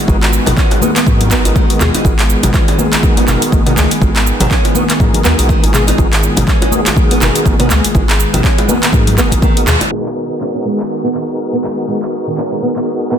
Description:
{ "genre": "afro house", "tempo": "122 BPM", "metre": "4/4", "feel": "swing 57% on 16ths", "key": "G# minor", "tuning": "A4 = 441 Hz", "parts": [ { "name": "warm analog pad", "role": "sustained chords", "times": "0.0-13.2 s", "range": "D#3 to G#4", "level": "-20 LUFS", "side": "equal", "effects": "chorus, sidechain pumping" }, { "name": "nylon-string guitar", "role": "arpeggios", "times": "0.1-13.2 s", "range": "D#3 to G#4", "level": "-19 LUFS", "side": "right 1 dB", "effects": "sidechain pumping, low-pass filter, ping-pong delay" }, { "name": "tonewheel organ", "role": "stabs", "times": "0.1-13.2 s", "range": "B3 to A#4", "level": "-21 LUFS", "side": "equal", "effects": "overdrive, chorus vibrato, slow rotary speaker, sidechain pumping, ping-pong delay" }, { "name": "warm sub bass", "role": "bass", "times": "0.1-9.8 s", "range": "F#1 to G#2", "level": "-16 LUFS", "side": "equal", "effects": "sidechain pumping" }, { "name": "afro-pop drum kit", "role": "drums", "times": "0.1-13.2 s", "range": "handclaps, hi-hat, shaker, toms", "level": "-17 LUFS", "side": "equal", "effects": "studio reverb" }, { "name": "electronic kick drum", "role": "drums", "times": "0.1-9.5 s", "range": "none", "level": "-14 LUFS", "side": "equal", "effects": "overdrive, studio reverb" }, { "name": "djembe", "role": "percussion", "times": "0.1-9.9 s", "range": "none", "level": "-24 LUFS", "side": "right 1 dB", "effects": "none" }, { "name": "congas", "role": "percussion", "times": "0.5-9.9 s", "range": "none", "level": "-21 LUFS", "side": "left 6 dB", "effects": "none" } ], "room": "light reverb, digital ambience", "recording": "dense, heavily limited modern master, low-pass filter", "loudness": "-10 LUFS", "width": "side -9 dB against mid", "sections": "0.0-9.9 A section; 9.9-13.2 B section", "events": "band accent 9.7; filter sweep on nylon-string guitar 9.9-13.2; filter sweep on analog synth pad 9.9-13.2; filter sweep 9.9-13.2", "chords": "0.0 G#m7", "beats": "| 0.08 0.57 1.06 1.56 | 2.05 2.54 3.03 3.52 | 4.02 4.51 5.00 5.49 | 5.98 6.47 6.97 7.46 | 7.95 8.44 8.93 9.43 | 9.92 10.41 10.90 11.39 | 11.88 12.38 12.87" }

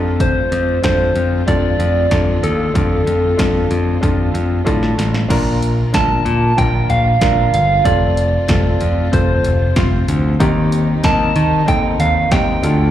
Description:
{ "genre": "piano-driven pop", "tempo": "94 BPM", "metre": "4/4", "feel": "straight", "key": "unclear", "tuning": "A4 = 440 Hz", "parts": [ { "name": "clear grand piano", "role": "accompaniment", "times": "0.0-12.9 s", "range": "Bb2 to C5", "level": "-21 LUFS", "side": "left 1 dB", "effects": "slapback echo" }, { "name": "warm symphonic string section", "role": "sustained chords", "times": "0.0-12.9 s", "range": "C3 to F4", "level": "-29 LUFS", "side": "left 2 dB", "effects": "none" }, { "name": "modern bright picked electric bass", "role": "bass", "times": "0.0-12.9 s", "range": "F1 to Eb3", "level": "-17 LUFS", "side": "equal", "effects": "none" }, { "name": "soft struck synth lead", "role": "melody", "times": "0.2-12.9 s", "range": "A4 to A5", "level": "-18 LUFS", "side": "right 1 dB", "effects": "chorus, slapback echo" }, { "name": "house drum kit", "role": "drums", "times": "0.2-12.8 s", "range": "crash cymbal, hi-hat, kick drum, snare drum, toms", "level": "-19 LUFS", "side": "equal", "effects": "none" } ], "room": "light reverb, digital ambience", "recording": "live gig heard through the venue's PA, club reverb", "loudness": "-13 LUFS", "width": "side -11 dB against mid", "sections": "0.0-5.3 A section; 5.3-12.9 B section", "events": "drum fill 4.7-5.3", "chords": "0.0 F6; 5.3 Bb; 7.9 F; 10.4 Cm/Eb", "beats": "| 0.20 0.84 1.48 2.11 | 2.75 3.39 4.03 4.67 | 5.30 5.94 6.58 7.22 | 7.86 8.49 9.13 9.77 | 10.41 11.04 11.68 12.32" }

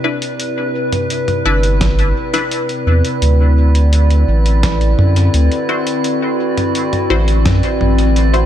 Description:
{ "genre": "ambient dub", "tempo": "85 BPM", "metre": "4/4", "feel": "straight", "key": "D mixolydian", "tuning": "A4 = 438 Hz", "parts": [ { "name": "warbly tape-like pad", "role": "sustained chords", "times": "0.0-8.5 s", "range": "C3 to D5", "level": "-18 LUFS", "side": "left 2 dB", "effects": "chorus, built-in reverb" }, { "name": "filtered dub chord stab", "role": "stabs", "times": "0.0-8.5 s", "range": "D4 to C5", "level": "-22 LUFS", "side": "left 2 dB", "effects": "phaser, dub echo" }, { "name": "drifting glass-harmonics texture", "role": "texture", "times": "0.0-8.5 s", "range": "B4", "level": "-25 LUFS", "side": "right 7 dB", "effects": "chorus, built-in reverb" }, { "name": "lo-fi sampler-style drum kit", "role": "drums", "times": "0.2-8.5 s", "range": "hi-hat, snare drum, toms", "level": "-22 LUFS", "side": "equal", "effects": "dub echo" }, { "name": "warm sub bass", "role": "bass", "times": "1.5-8.5 s", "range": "G1 to F#2", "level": "-12 LUFS", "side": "equal", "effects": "none" }, { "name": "electronic kick drum", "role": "drums", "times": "1.8-7.6 s", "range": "none", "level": "-21 LUFS", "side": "equal", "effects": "none" } ], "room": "little or no reverb", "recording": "none", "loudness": "-12 LUFS", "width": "side -11 dB against mid", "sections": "0.0-8.5 A section", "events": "none", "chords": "0.0 Cmaj9; 3.2 D9", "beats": "| 0.40 1.10 1.81 2.51 | 3.22 3.92 4.63 5.34 | 6.04 6.75 7.46 8.16" }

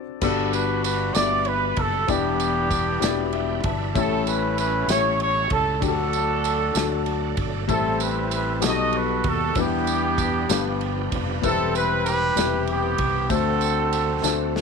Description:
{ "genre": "slow gospel", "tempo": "64 BPM (dotted quarters)", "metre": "6/8", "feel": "straight", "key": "G major", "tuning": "A4 = 440 Hz", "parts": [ { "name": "warm upright piano", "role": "accompaniment", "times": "0.0-14.6 s", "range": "G2 to A5", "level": "-26 LUFS", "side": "left 14 dB", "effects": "none" }, { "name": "warm horn section", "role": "melody", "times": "0.2-14.5 s", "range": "B3 to D#5", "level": "-24 LUFS", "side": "right 2 dB", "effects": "none" }, { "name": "bright tonewheel organ", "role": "sustained chords", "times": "0.2-14.6 s", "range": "C3 to A5", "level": "-34 LUFS", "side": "right 15 dB", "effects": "fast rotary speaker, overdrive, chorus vibrato" }, { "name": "fingered electric bass", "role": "bass", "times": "0.2-14.6 s", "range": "E1 to E2", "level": "-28 LUFS", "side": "right 2 dB", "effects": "none" }, { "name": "natural country drum kit", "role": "drums", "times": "0.2-14.6 s", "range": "crash cymbal, kick drum, ride cymbal, snare drum", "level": "-30 LUFS", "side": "right 1 dB", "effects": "none" }, { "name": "tambourine", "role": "percussion", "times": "0.2-14.5 s", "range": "none", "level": "-31 LUFS", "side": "right 20 dB", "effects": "none" } ], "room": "small room ambience", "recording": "1960s-style stereo with parts hard left and right, faint mains hum", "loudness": "-20 LUFS", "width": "side -5 dB against mid", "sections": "0.2-14.6 A section", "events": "break 0.0; upright piano fill 3.0-4.0; tonewheel organ fill 3.0-4.0, 6.8-7.7; drum fill 14.2-14.6", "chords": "0.2 Gmaj7; 2.1 Em7; 4.0 A7; 5.8 D; 7.7 Am7; 8.6 B7b13; 9.6 Em7; 10.5 G7; 11.4 Cmaj7/E; 13.3 D7", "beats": "| 0.22 1.15 | 2.09 3.02 | 3.96 4.89 | 5.82 6.76 | 7.69 8.62 | 9.56 10.49 | 11.43 12.36 | 13.29 14.23" }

